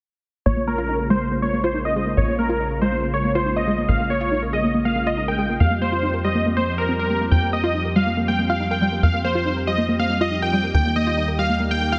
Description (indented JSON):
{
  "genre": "trance",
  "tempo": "140 BPM",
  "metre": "4/4",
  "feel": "straight",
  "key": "Bb dorian",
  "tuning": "A4 = 440 Hz",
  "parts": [
    { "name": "supersaw chords", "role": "melody", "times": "0.5-12.0 s", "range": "Bb4 to G5", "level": "-25 LUFS", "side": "equal", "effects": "low-pass filter, delay" },
    { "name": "filtered supersaw swell", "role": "sustained chords", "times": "0.5-12.0 s", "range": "Db3 to G4", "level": "-29 LUFS", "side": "equal", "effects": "none" },
    { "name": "analog pluck", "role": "arpeggios", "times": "0.5-12.0 s", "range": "G3 to Bb4", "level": "-26 LUFS", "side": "equal", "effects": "chorus, delay" },
    { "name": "tight sequencer bass", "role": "bass", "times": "0.5-12.0 s", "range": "Bb1 to F2", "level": "-27 LUFS", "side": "equal", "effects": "none" }
  ],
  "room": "moderate lush hall reverb, RT60 2.9 s",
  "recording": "dense, heavily limited modern master",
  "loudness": "-21 LUFS",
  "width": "mono",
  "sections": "0.5-12.0 A section",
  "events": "filter sweep on supersaw synth 0.5-12.0; filter sweep on synth pluck 0.5-12.0",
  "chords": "0.5 Bbm7; 5.6 Fsus2; 10.7 Eb",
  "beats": "| 0.46 0.89 1.32 1.75 | 2.17 2.60 3.03 3.46 | 3.89 4.32 4.75 5.17 | 5.60 6.03 6.46 6.89 | 7.32 7.75 8.17 8.60 | 9.03 9.46 9.89 10.32 | 10.74 11.17 11.60"
}